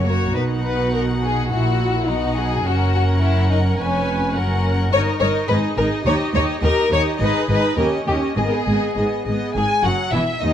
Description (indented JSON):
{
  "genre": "quick classical-period movement for string orchestra",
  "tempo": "105 BPM",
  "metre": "2/4",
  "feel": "straight",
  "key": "B major, G# minor from 4.9 s",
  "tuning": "A4 = 440 Hz",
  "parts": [
    { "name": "rich chamber violin section", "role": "second line", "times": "0.0-10.5 s", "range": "C#4 to C#5", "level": "-22 LUFS", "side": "left 3 dB", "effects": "none" },
    { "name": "warm studio viola section", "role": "accompaniment", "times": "0.0-10.5 s", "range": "D#3 to B4", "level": "-24 LUFS", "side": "right 1 dB", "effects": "none" },
    { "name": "dark chamber double bass section", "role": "bass", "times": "0.0-10.5 s", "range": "E1 to D#2", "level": "-23 LUFS", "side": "equal", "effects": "none" },
    { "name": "rich chamber cello section", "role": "bass", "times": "0.0-10.5 s", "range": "D#2 to B2", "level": "-24 LUFS", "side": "right 1 dB", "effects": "none" },
    { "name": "rich chamber violin section", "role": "melody", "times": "0.4-10.5 s", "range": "D#5 to G#5", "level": "-26 LUFS", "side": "left 3 dB", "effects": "none" }
  ],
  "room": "moderate scoring stage reverb, RT60 1.5 s",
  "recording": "close, detailed microphones, vinyl crackle",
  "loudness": "-17 LUFS",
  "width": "side -10 dB against mid",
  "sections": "0.4-9.6 A section",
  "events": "none",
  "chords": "0.4 B; 1.5 F#7/A#; 2.1 B; 2.7 F#; 3.8 C#7/E#; 4.4 F#; 4.9 D#; 5.5 G#5; 6.1 D#; 7.2 G#m; 7.8 D#7; 8.4 G#m; 9.6 G#5"
}